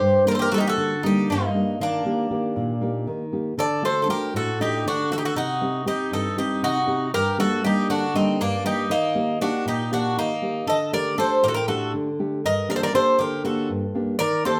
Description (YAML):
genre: greek folk, Greek bouzouki band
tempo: 237 BPM (eighths)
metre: 7/8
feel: straight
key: unclear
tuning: A4 = 442 Hz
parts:
  - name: Greek bouzouki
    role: melody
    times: 0.0-14.6 s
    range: D4 to Eb5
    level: -26 LUFS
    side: equal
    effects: none
  - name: Greek bouzouki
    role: second line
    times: 0.0-14.6 s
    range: Bb3 to Bb4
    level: -30 LUFS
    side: equal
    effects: none
  - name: nylon-string guitar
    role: accompaniment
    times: 0.0-14.6 s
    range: G2 to G4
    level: -27 LUFS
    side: equal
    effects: none
room: moderate small room reverb, RT60 0.5 s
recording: none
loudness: -23 LUFS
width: mono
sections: 0.0-3.6 A section; 3.6-14.6 B section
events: none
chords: 0.0 Gm; 1.8 Eb; 3.6 D; 5.4 Cm; 7.1 Gm; 8.9 Eb; 10.7 Dsus4; 12.4 Gm